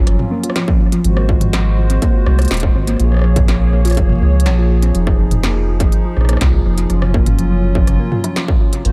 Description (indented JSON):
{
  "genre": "IDM",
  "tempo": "123 BPM",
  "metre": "4/4",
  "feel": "straight",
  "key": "unclear",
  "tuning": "A4 = 440 Hz",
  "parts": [
    { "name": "hollow soft pad", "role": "sustained chords", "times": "0.0-8.9 s", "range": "F3 to Db5", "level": "-26 LUFS", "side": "equal", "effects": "chorus" },
    { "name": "harp-like synth pluck", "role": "arpeggios", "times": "0.0-8.9 s", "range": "C3 to F4", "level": "-23 LUFS", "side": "equal", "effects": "chorus, analog delay" },
    { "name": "round analog bass", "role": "bass", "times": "0.0-8.9 s", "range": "Eb1 to Db2", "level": "-17 LUFS", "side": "equal", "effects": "none" },
    { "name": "industrial drum kit", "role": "drums", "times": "0.1-8.9 s", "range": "hi-hat, rim click, snare drum, toms", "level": "-26 LUFS", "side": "equal", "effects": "analog delay" },
    { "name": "electronic kick drum", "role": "drums", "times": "0.7-8.6 s", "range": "none", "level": "-17 LUFS", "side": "equal", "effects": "distortion" }
  ],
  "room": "little or no reverb",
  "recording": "echo-heavy mix",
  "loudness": "-14 LUFS",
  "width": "mono",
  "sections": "0.0-8.9 A section",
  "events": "none",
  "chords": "0.0 Gbmaj7(no3); 1.0 Ab7; 3.0 Bbm7; 4.9 Fm7; 6.9 Gbmaj7(no3)",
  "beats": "0.07 0.56 | 1.04 1.53 2.02 2.51 | 3.00 3.48 3.97 4.46 | 4.95 5.43 5.92 6.41 | 6.90 7.39 7.87 8.36 | 8.85"
}